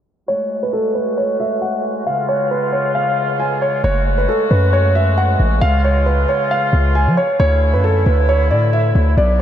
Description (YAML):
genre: hip hop, trap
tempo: 135 BPM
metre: 4/4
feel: half-time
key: F# minor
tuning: A4 = 440 Hz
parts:
  - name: dark grand piano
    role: melody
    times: 0.3-9.4 s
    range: A4 to G#5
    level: -17 LUFS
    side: right 1 dB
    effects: diffuse ambient delay
  - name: mellow woodwind section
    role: sustained chords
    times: 0.3-9.4 s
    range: C#3 to F#4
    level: -22 LUFS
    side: equal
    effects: none
  - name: warm 808-style bass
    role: bass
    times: 3.8-9.4 s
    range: F#1 to E#3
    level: -14 LUFS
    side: equal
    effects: none
room: moderate huge ambient reverb, RT60 7.8 s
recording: dreamy mix soaked in reverb, low-pass filter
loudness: -14 LUFS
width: side -10 dB against mid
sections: 0.3-3.8 A section; 3.8-9.4 B section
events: filter sweep 0.3-3.8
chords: 0.3 F#madd9; 2.1 C#; 3.8 F#madd9; 5.6 C#; 7.4 Dsus2